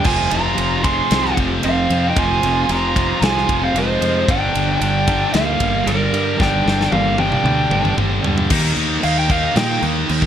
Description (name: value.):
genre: hard rock.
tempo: 114 BPM.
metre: 4/4.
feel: straight.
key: G phrygian.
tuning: A4 = 440 Hz.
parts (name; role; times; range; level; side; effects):
bluesy overdriven lead guitar; melody; 0.0-9.8 s; Bb4 to C6; -20 LUFS; right 1 dB; distortion, digital delay.
octave-fuzz lead guitar; second line; 0.0-7.9 s; G3 to Ab4; -25 LUFS; right 4 dB; distortion, digital delay.
distorted electric guitar; riff; 0.0-10.3 s; F2 to Eb4; -24 LUFS; equal; distortion.
heavy high-gain guitar; riff; 0.0-10.3 s; F2 to Eb4; -23 LUFS; equal; distortion.
big rock drum kit; drums; 0.0-10.3 s; crash cymbal, kick drum, ride cymbal, snare drum, toms; -21 LUFS; equal; none.
fuzz fingered electric bass; bass; 0.1-10.3 s; F1 to Bb2; -22 LUFS; equal; overdrive.
room: light reverb, small room ambience.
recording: bright 1980s-style digital production.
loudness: -15 LUFS.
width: side -9 dB against mid.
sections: 0.0-8.5 A section; 8.5-10.3 B section.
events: drum fill 6.4-8.5; lead electric guitar solo 8.5-10.3.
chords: 0.1 Fm; 4.3 Gm; 8.5 Eb5.